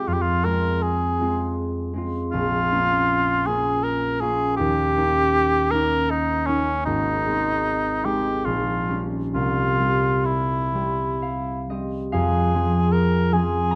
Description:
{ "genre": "classical, romantic duo for cor anglais and harp", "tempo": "59-81 BPM", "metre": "3/4", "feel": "rubato", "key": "F minor", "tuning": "A4 = 441 Hz", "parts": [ { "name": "mellow cor anglais", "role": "melody", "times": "0.0-13.8 s", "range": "Db4 to Bb4", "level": "-25 LUFS", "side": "equal", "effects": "none" }, { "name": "concert harp", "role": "accompaniment", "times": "0.0-13.8 s", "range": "Ab1 to Bb5", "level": "-25 LUFS", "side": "equal", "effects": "none" } ], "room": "light reverb", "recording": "close, detailed microphones", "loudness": "-22 LUFS", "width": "mono", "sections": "0.0-12.1 A section; 12.1-13.8 A section", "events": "none", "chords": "0.1 Fm; 2.3 Bbm; 4.6 Eb7; 6.9 Ab; 8.5 Gdim/Bb; 9.3 C; 12.1 Fm", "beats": "| 0.07 0.83 1.58 | 2.33 3.10 3.85 | 4.59 5.36 6.11 | 6.87 7.65 8.46 | 9.34 10.25 11.23 | 12.13 12.93 13.71" }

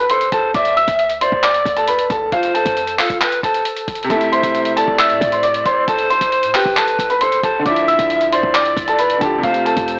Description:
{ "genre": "hip hop, trap", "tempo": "135 BPM", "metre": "4/4", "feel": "half-time", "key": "A minor", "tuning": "A4 = 440 Hz", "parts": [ { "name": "dark baby grand piano", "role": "melody", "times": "0.0-10.0 s", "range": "F4 to E6", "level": "-16 LUFS", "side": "equal", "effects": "digital delay" }, { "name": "breathy bright pan flute", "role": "second line", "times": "0.0-10.0 s", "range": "A4 to E5", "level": "-19 LUFS", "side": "equal", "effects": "digital delay" }, { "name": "clean 808-style bass", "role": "bass", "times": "0.0-10.0 s", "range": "F1 to A2", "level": "-28 LUFS", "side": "equal", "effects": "none" }, { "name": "lo-fi sampler-style drum kit", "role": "drums", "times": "0.1-10.0 s", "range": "handclaps, hi-hat, kick drum", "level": "-22 LUFS", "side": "equal", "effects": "none" }, { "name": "clear concert grand piano", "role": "accompaniment", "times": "4.0-10.0 s", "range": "C3 to G4", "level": "-22 LUFS", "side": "equal", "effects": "none" } ], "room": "light reverb, studio ambience", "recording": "blown-out, overdriven recording, overdrive, AM radio sound", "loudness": "-13 LUFS", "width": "side -34 dB against mid", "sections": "0.0-10.0 A section", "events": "none", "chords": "0.0 Am; 0.5 Dsus2; 2.3 F; 4.1 Am; 7.7 Dmadd9; 9.4 F", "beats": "0.10 | 0.55 0.99 1.43 1.88 | 2.32 2.77 3.21 3.66 | 4.10 4.54 4.99 5.43 | 5.88 6.32 6.77 7.21 | 7.66 8.10 8.54 8.99 | 9.43 9.88" }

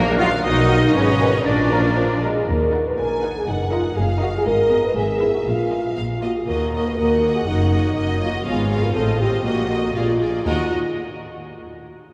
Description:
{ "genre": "cinematic", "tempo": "120 BPM", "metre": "2/4", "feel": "straight", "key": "Eb minor", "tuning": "A4 = 440 Hz", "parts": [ { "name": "rich studio violin section", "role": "second line", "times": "0.0-10.7 s", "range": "Bb4 to Ab5", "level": "-33 LUFS", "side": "equal", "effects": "none" }, { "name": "warm oboe", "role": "second line", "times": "0.0-2.2 s", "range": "Db5 to F5", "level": "-31 LUFS", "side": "equal", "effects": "none" }, { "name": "mellow French horn section", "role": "sustained chords", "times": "0.0-10.7 s", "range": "Eb4 to Cb5", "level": "-25 LUFS", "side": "equal", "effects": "none" }, { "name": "clear tuba", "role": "bass", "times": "0.0-2.3 s", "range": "Ab1 to B1", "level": "-30 LUFS", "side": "equal", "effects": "none" }, { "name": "rich studio cello section", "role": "bass", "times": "0.0-10.7 s", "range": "Eb2 to F4", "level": "-27 LUFS", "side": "equal", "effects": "none" }, { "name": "warm studio double bass section", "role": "bass", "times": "0.0-10.7 s", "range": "Gb1 to Eb2", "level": "-27 LUFS", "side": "equal", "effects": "none" }, { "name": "rich studio violin section", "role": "melody", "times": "0.2-10.7 s", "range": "Bb4 to Gb5", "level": "-34 LUFS", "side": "equal", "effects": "none" }, { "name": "hollow concert flute", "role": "second line", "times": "0.2-2.3 s", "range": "F#5 to Bb5", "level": "-36 LUFS", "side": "equal", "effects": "none" }, { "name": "warm clarinet", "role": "second line", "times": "0.2-2.3 s", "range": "none", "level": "barely audible", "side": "none", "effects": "none" }, { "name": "mellow bassoon", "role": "accompaniment", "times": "0.2-2.5 s", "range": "Eb3 to Ab3", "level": "-32 LUFS", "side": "equal", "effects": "none" }, { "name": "warm studio viola section", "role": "accompaniment", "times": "0.2-10.7 s", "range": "Bb3 to Cb5", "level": "-30 LUFS", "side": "equal", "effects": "none" } ], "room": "wet cathedral reverb, RT60 4.6 s", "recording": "none", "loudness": "-20 LUFS", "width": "mono", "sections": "0.0-2.5 A section; 2.5-10.5 B section; 10.5-11.5 C section", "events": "none", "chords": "0.4 Bmaj7; 0.9 Abm; 1.5 Bb; 2.5 Ebm; 3.5 Ebm/Gb; 4.5 Abm; 5.0 E/G#; 5.5 Bbsus4; 6.5 Ebm; 7.5 Ebm/Gb; 8.5 Fdim/Ab; 9.0 F7/A; 9.5 Ebm/Bb; 10.0 Bb7; 10.5 Ebm", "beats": "| 0.45 0.95 | 1.46 1.97 | 2.48 2.98 | 3.48 3.98 | 4.47 4.97 | 5.47 5.97 | 6.48 6.98 | 7.48 7.97 | 8.47 8.96 | 9.45 9.95 | 10.46" }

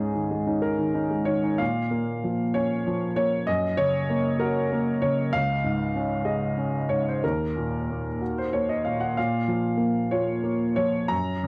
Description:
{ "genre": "neoclassical minimalist piano", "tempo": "63 BPM (dotted quarters)", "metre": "6/8", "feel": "uneven beats, rubato", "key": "Bb minor", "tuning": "A4 = 441 Hz", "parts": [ { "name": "clear baby grand piano", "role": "solo", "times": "0.0-11.5 s", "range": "Db2 to Bb5", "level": "-26 LUFS", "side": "equal", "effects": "none" } ], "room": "light reverb", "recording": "dry, close 1970s-style studio recording", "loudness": "-26 LUFS", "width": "mono", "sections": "0.0-1.6 A section; 1.6-11.5 B section", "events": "none", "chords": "0.0 Absus4; 1.6 Bbm; 3.5 Gb; 5.3 Dbsus2; 7.2 Ebm; 9.2 Bbm", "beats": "0.62 | 1.60 2.55 | 3.48 4.41 | 5.33 6.26 | 7.23 8.20 | 9.16 10.12 | 11.11" }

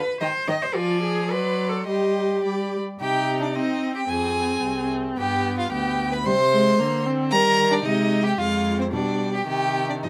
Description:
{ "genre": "quick classical-period movement for string quartet", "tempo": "111 BPM", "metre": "2/4", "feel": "straight", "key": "C minor", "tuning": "A4 = 442 Hz", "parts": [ { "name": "warm violin", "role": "melody", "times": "0.0-10.1 s", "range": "C5 to C6", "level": "-29 LUFS", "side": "equal", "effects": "none" }, { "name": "rich cello", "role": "bass", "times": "0.0-10.1 s", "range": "C2 to Eb5", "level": "-29 LUFS", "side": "equal", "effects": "none" }, { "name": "warm violin", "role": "second line", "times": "0.2-10.1 s", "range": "C4 to Eb5", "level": "-28 LUFS", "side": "equal", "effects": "none" }, { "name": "warm viola", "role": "accompaniment", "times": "0.2-10.1 s", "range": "Eb3 to Eb4", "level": "-28 LUFS", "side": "equal", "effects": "none" } ], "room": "light reverb", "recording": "none", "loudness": "-23 LUFS", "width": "mono", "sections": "0.0-3.0 A section; 3.0-10.1 B section", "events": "none", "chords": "0.2 Cm/Eb; 0.8 Ddim/F; 1.3 D7/F#; 1.9 Cm/G; 3.0 Cm; 4.1 Fm; 5.2 G; 6.3 C5; 7.3 Eb; 7.9 Ab/C; 8.4 Fm; 8.9 G/B; 9.5 Cm", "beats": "0.21 | 0.75 1.31 | 1.88 2.44 | 3.00 3.55 | 4.09 4.63 | 5.17 5.71 | 6.25 6.79 | 7.32 7.85 | 8.39 8.93 | 9.47 10.03" }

